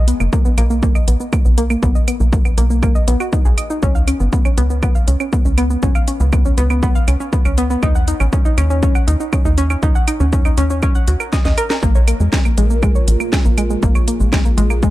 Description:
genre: melodic techno.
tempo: 120 BPM.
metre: 4/4.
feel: straight.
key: unclear.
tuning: A4 = 440 Hz.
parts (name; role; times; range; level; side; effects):
warbly dusty pluck; arpeggios; 0.0-14.9 s; Ab3 to Gb5; -20 LUFS; left 1 dB; chorus, sidechain pumping, digital delay.
tight sequencer bass; bass; 0.0-14.9 s; F#1 to F2; -16 LUFS; equal; sidechain pumping.
techno drum kit; drums; 0.1-14.9 s; claves, hi-hat, shaker, snare drum; -25 LUFS; right 2 dB; overdrive.
electronic kick drum; drums; 0.3-14.9 s; none; -16 LUFS; equal; overdrive.
dark analog pad; sustained chords; 12.3-14.9 s; Bb3 to Bb4; -26 LUFS; right 1 dB; chorus, phaser, sidechain pumping.
room: little or no reverb.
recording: dark, warm production.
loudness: -13 LUFS.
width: side -16 dB against mid.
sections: 0.0-14.9 A section.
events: drum fill 11.3-11.8.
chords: 0.0 B; 3.8 N.C.; 11.8 Bb5.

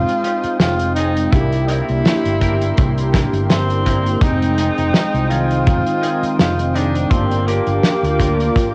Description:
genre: vaporwave.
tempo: 83 BPM.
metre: 4/4.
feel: swing 55% on 16ths.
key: F dorian.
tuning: A4 = 440 Hz.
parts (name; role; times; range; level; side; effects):
warm tenor saxophone; melody; 0.0-8.7 s; Bb3 to F4; -23 LUFS; equal; cassette tape, tape echo.
mellow synth brass; accompaniment; 0.0-8.7 s; Eb3 to G5; -23 LUFS; equal; subtle chorus.
lush unison pad; sustained chords; 0.0-8.7 s; E4 to Eb6; -34 LUFS; equal; none.
mellow fretless electric bass; bass; 0.0-8.5 s; F1 to D2; -22 LUFS; equal; tube saturation.
loose indie drum kit; drums; 0.1-8.7 s; hi-hat, snare drum; -22 LUFS; equal; cassette tape.
semi-hollow electric guitar; riff; 0.2-8.4 s; Bb3 to Bb4; -34 LUFS; equal; lush chorus.
kick drum; drums; 1.3-8.7 s; none; -20 LUFS; equal; cassette tape.
room: studio ambience.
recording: home recording on cassette.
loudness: -17 LUFS.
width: mono.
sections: 0.0-8.7 A section.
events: none.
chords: 0.0 Fm7; 1.3 C7; 4.2 Fm7; 7.1 Gm7.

